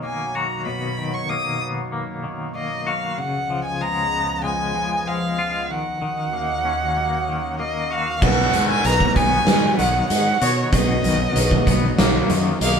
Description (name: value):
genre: post-rock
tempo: 95 BPM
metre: 4/4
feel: straight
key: B lydian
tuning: A4 = 439 Hz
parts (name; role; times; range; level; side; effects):
- lush unison pad; sustained chords; 0.0-12.8 s; C#2 to D#5; -30 LUFS; right 1 dB; chorus, phaser
- twangy electric guitar; arpeggios; 0.0-12.8 s; B2 to F#4; -26 LUFS; left 3 dB; tremolo
- warm violin; melody; 0.1-12.8 s; C#5 to D#6; -23 LUFS; equal; none
- felt-muted upright piano; arpeggios; 8.2-12.8 s; A#4 to D#5; -30 LUFS; equal; none
- fuzz fingered electric bass; bass; 8.2-12.8 s; B1 to B2; -22 LUFS; equal; overdrive
- oversized low-tuned drum kit; drums; 8.2-12.8 s; crash cymbal, hi-hat, kick drum, snare drum; -19 LUFS; right 1 dB; none
room: wet studio reverb, RT60 0.6 s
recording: band playing live in one room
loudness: -18 LUFS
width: side -6 dB against mid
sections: 0.0-8.2 A section; 8.2-12.8 B section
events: none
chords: 0.0 Bmaj7; 3.2 C#7; 5.7 D#m7; 8.2 Bmaj7